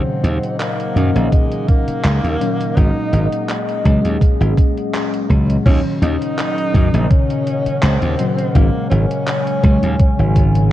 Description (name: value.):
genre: vaporwave.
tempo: 83 BPM.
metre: 4/4.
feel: swing 53% on 16ths.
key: Eb minor.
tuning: A4 = 440 Hz.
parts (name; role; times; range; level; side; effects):
breathy tenor saxophone; melody; 0.0-10.7 s; Ab3 to Eb4; -24 LUFS; equal; analog delay.
FM electric piano with soft pad layer; accompaniment; 0.0-10.7 s; Bb2 to Db4; -20 LUFS; left 2 dB; analog chorus, analog delay.
warbly tape-like pad; sustained chords; 0.0-10.7 s; Db3 to Ab5; -25 LUFS; left 1 dB; chorus, built-in reverb.
glassy slap bass; bass; 0.2-10.7 s; Ab1 to Gb2; -15 LUFS; equal; none.
gated 80s digital drum machine; drums; 0.2-10.7 s; crash cymbal, handclaps, hi-hat; -28 LUFS; equal; gated reverb.
electronic kick drum; drums; 1.3-10.5 s; none; -14 LUFS; equal; none.
room: light reverb, digital ambience.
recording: cassette tape.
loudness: -14 LUFS.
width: side -13 dB against mid.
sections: 0.0-5.7 A section; 5.7-10.7 B section.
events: none.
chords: 0.0 Ebm7; 2.8 Ab9sus4; 5.7 Ebm7; 8.6 Ab9sus4.